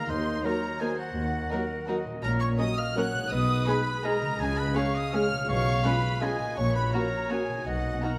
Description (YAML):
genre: classical, orchestral ballroom waltz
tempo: 166 BPM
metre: 3/4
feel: uneven beats, rubato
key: F# major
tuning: A4 = 440 Hz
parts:
  - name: warm symphonic violin section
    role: melody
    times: 0.0-8.2 s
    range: Gb5 to F#6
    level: -39 LUFS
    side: equal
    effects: none
  - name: bright clarinet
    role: second line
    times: 0.0-8.2 s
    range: Bb4 to F#5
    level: -37 LUFS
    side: equal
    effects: none
  - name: large flute ensemble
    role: second line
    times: 0.0-8.2 s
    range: F#5 to F#6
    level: -39 LUFS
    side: equal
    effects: none
  - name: warm oboe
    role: second line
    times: 0.0-8.2 s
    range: Gb4 to F#5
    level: -37 LUFS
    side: equal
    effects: none
  - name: concert harp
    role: arpeggios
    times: 0.0-8.2 s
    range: A#2 to G#4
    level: -39 LUFS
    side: equal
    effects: none
  - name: dark symphonic cello section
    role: bass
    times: 0.1-8.0 s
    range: Eb2 to C#3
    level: -35 LUFS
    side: equal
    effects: none
  - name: warm studio double bass section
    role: bass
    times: 0.1-8.0 s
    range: A#1 to Eb2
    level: -35 LUFS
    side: equal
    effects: none
  - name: warm studio violin section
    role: second line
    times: 0.4-8.1 s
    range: C#4 to Bb4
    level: -41 LUFS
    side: equal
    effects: none
  - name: warm symphonic viola section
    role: accompaniment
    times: 0.4-8.1 s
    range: Gb3 to D#4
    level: -38 LUFS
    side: equal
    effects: none
  - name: mellow French horn section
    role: sustained chords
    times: 0.4-8.2 s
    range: F#3 to Bb4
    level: -37 LUFS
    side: equal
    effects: none
room: moderate scoring stage reverb, RT60 2.0 s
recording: none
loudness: -28 LUFS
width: mono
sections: 0.0-8.2 A section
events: none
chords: 0.1 Ebm; 2.2 F#/A#; 3.3 G#m/B; 4.4 C#; 5.5 C#7/B; 6.6 F#/A#; 7.7 Bmaj7